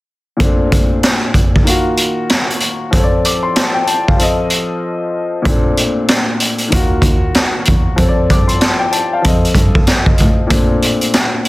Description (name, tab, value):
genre	hip hop, boom-bap hip-hop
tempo	95 BPM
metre	4/4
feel	swing 63% on 16ths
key	Bb major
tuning	A4 = 439 Hz
part	warm upright piano	accompaniment	0.4-11.5 s	Bb2 to D6	-17 LUFS	left 2 dB	high-pass filter, low-pass filter
part	raw garage drum kit	drums	0.4-11.5 s	hi-hat, kick drum, snare drum	-13 LUFS	equal	none
part	clear cello	bass	5.5-10.9 s	Eb2 to Bb2	-18 LUFS	equal	none
room	small room reverb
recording	dense, heavily limited modern master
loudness	-11 LUFS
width	side -19 dB against mid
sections	0.4-5.5 A section; 5.5-11.5 B section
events	break 4.8-5.5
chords	0.4 Bbmaj9; 1.7 Ebmadd9; 2.9 Dm7/F; 4.2 F7; 5.5 Bbmaj9; 6.7 Ebmadd9; 8.0 Dm7/F; 9.2 F7; 10.5 Bbmaj9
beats	| 0.40 1.03 1.66 2.29 | 2.93 3.56 4.19 4.82 | 5.45 6.08 6.72 7.35 | 7.98 8.61 9.24 9.87 | 10.51 11.14